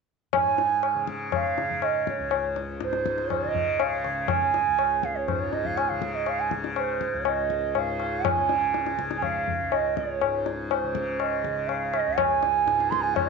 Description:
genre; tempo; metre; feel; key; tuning
indian classical, Hindustani; 122 BPM; 4/4; straight; Db raga hamsadhwani; A4 = 439 Hz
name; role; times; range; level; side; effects
mellow hollow bansuri; melody; 0.3-13.3 s; C5 to C6; -26 LUFS; right 9 dB; none
tanpura; drone; 0.3-13.3 s; Db2 to Db3; -31 LUFS; left 3 dB; none
tabla; percussion; 0.3-13.3 s; none; -28 LUFS; left 14 dB; none
room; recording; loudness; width
moderate echo chamber reverb, RT60 2.0 s, small room ambience; 1960s-style stereo with parts hard left and right, nothing above 7.9 kHz; -23 LUFS; side -4 dB against mid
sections
0.3-13.3 A section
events
none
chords
none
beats
| 0.33 0.82 1.32 1.82 | 2.31 2.81 3.30 3.80 | 4.29 4.79 5.28 5.78 | 6.27 6.76 7.26 7.75 | 8.24 8.74 9.23 9.72 | 10.21 10.71 11.20 11.69 | 12.18 12.67 13.16

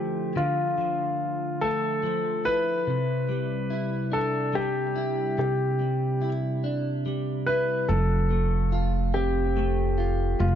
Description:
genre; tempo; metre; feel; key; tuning
pop; 48 BPM (dotted quarters); 6/8; straight; C major; A4 = 441 Hz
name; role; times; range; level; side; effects
clear concert grand piano; melody; 0.0-10.6 s; F4 to B4; -27 LUFS; left 2 dB; tape echo
direct-recorded clean electric guitar; accompaniment; 0.0-10.6 s; C3 to F4; -28 LUFS; right 1 dB; double-tracked left and right
upright bass; bass; 7.9-10.6 s; F1; -24 LUFS; right 1 dB; none
room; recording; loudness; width
light reverb, small room reverb; dark, warm production, nothing above 7.5 kHz; -24 LUFS; side -9 dB against mid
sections
0.0-10.6 A section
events
none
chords
0.0 Dmadd9; 2.9 Cadd9; 7.9 F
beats
| 0.36 1.61 | 2.87 4.12 | 5.38 6.63 | 7.89 9.15 | 10.40

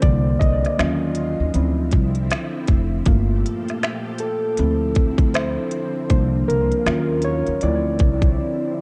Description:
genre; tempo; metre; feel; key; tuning
lo-fi hip hop; 79 BPM; 4/4; swing 60% on 16ths; D minor; A4 = 440 Hz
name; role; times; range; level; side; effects
muted felt-like synth keys; accompaniment; 0.0-8.8 s; D3 to Eb5; -25 LUFS; equal; chorus, cassette tape, tape echo
soft string machine; sustained chords; 0.0-8.8 s; Bb2 to A4; -34 LUFS; equal; ensemble chorus
upright bass; bass; 0.0-8.4 s; F1 to Eb2; -24 LUFS; equal; none
organic electronic drum kit; drums; 0.0-8.4 s; finger snaps, hi-hat, kick drum, snare drum; -22 LUFS; equal; vintage 12-bit sampler grit
room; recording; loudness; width
little or no reverb; echo-heavy mix, cassette tape; -20 LUFS; mono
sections
0.0-8.8 A section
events
synth keys solo 0.0-8.8; break 8.4-8.8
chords
0.0 C9sus4; 0.8 Ebm9; 1.5 Dm9; 3.1 Gm9; 4.6 Dm9; 6.1 C9sus4; 6.9 Ebm9; 7.6 Dm9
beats
| 0.03 0.79 1.54 2.30 | 3.06 3.82 4.58 5.34 | 6.10 6.86 7.62 8.38

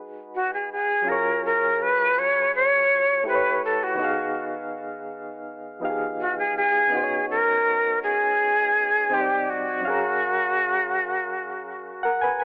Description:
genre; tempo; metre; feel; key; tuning
R&B; 82 BPM; 4/4; straight; F# major; A4 = 438 Hz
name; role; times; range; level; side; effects
soft electric-piano-like synth keys; accompaniment; 0.0-12.4 s; C3 to G#5; -31 LUFS; equal; chorus, tremolo, cassette tape, plate reverb
breathy bright jazz flute; melody; 0.4-12.1 s; F#4 to C#5; -23 LUFS; equal; cassette tape, plate reverb, analog delay
room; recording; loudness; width
moderate studio reverb, RT60 0.6 s; home recording on cassette, telephone sound; -23 LUFS; mono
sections
0.0-12.4 A section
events
none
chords
0.0 G#m7; 1.1 F#sus2; 3.3 A9; 4.0 Fm7b5; 6.9 C#9sus4; 9.1 Cmadd9; 9.8 F#maj9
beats
0.34 | 1.07 1.80 2.53 3.26 | 3.99 4.73 5.46 6.19 | 6.92 7.65 8.38 9.12 | 9.85 10.58 11.31 12.04

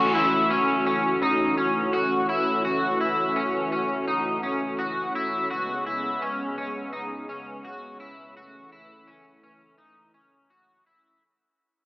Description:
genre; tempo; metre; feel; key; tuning
dream pop; 84 BPM; 4/4; straight; F# dorian; A4 = 439 Hz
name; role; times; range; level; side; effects
warm analog pad; sustained chords; 0.0-11.2 s; C#3 to F#4; -28 LUFS; equal; chorus
electric guitar at the edge of break-up; arpeggios; 0.0-11.2 s; C#4 to F#4; -24 LUFS; left 1 dB; analog chorus, tape echo
warm sub bass; bass; 0.0-11.2 s; E1 to F#1; -51 LUFS; equal; none
room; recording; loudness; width
moderate huge ambient reverb, RT60 8.4 s; AM radio sound; -22 LUFS; side -22 dB against mid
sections
0.0-11.2 A section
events
fade-out 0.0-11.2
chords
0.0 F#m7; 5.5 C#m7/F#; 8.4 A/F#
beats
0.51 1.22 1.94 | 2.65 3.37 4.08 4.80 | 5.51 6.22 6.94 7.65 | 8.37 9.08 9.80 10.51

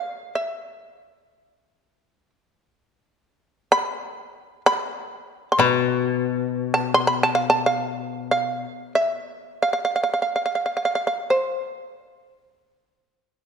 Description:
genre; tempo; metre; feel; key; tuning
japanese traditional, Japanese chamber music; free time; none; none; unclear; A4 = 443 Hz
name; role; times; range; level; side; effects
shamisen; melody; 0.0-13.4 s; E5 to C6; -21 LUFS; right 1 dB; none
koto; accompaniment; 5.6-8.6 s; B2; -24 LUFS; left 10 dB; none
room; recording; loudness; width
moderate scoring stage reverb, RT60 1.9 s; minimal, uncompressed stereo recording; -20 LUFS; side -6 dB against mid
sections
0.0-13.4 A section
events
none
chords
none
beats
free time

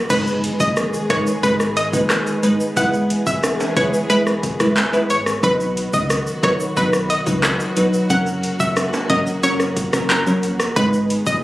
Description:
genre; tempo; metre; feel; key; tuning
dancehall; 90 BPM; 4/4; straight; G# minor; A4 = 440 Hz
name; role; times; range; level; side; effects
warm studio string section; sustained chords; 0.0-11.4 s; C#3 to G#4; -26 LUFS; equal; sidechain pumping
sub bass with octave; bass; 0.0-11.4 s; E1 to C#2; -28 LUFS; equal; none
analog pluck; melody; 0.1-11.4 s; A#4 to F#5; -22 LUFS; equal; chorus, ping-pong delay
wavetable chord stab; accompaniment; 0.1-11.4 s; F#3 to B4; -20 LUFS; equal; none
afro-pop drum kit; drums; 0.1-11.4 s; crash cymbal, handclaps, hi-hat, kick drum, rim click, shaker; -22 LUFS; equal; overdrive
egg shaker and timbales; percussion; 0.1-11.4 s; none; -31 LUFS; right 1 dB; none
impact; sound effects; 0.1-2.8 s; none; -34 LUFS; equal; none
room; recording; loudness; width
light reverb; recorded on a phone in the room, club reverb; -16 LUFS; side -16 dB against mid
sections
0.1-11.4 A section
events
impact 0.1-2.8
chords
0.1 G#m; 2.8 E; 5.4 B; 8.1 F#; 10.8 G#m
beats
| 0.10 0.77 1.43 2.10 | 2.77 3.43 4.10 4.77 | 5.43 6.10 6.77 7.43 | 8.10 8.77 9.43 10.10 | 10.77 11.43

